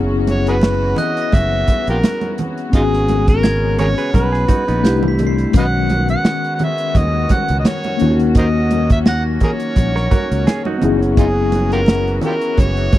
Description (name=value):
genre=lush 1970s-style soul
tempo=85 BPM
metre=4/4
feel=swing 54% on 16ths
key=unclear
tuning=A4 = 440 Hz
part: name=mellow tine electric piano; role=accompaniment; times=0.0-13.0 s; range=D#3 to G#4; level=-20 LUFS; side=left 4 dB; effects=medium stereo tremolo
part: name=warm studio string section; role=sustained chords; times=0.0-13.0 s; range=C#3 to F#4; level=-27 LUFS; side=equal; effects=none
part: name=fingered electric bass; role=bass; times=0.0-12.9 s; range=F#1 to D#2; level=-18 LUFS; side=equal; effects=none
part: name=overdriven harmonica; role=melody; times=0.3-13.0 s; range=D#4 to F#5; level=-20 LUFS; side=equal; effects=none
part: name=warm soul drum kit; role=drums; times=0.3-13.0 s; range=hi-hat, kick drum, snare drum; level=-14 LUFS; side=equal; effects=none
part: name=congas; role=percussion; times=0.3-13.0 s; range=none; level=-25 LUFS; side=right 4 dB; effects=none
part: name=glockenspiel with hard plastic mallets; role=texture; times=1.0-9.9 s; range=F#6 to C7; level=-32 LUFS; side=right 3 dB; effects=none
part: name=semi-hollow electric guitar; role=riff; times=3.8-5.0, 10.0-11.0 s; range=B3 to C#5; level=-24 LUFS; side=right 5 dB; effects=none
room=small room ambience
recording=dry, close 1970s-style studio recording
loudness=-13 LUFS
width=side -14 dB against mid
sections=0.0-13.0 A section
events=none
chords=0.0 F#7sus4; 2.7 G#m11; 4.8 C69; 5.5 B69; 8.0 D#m7; 10.8 F#7sus4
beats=0.62 1.33 2.03 | 2.73 3.44 4.14 4.84 | 5.55 6.25 6.95 7.66 | 8.36 9.06 9.76 10.47 | 11.17 11.87 12.58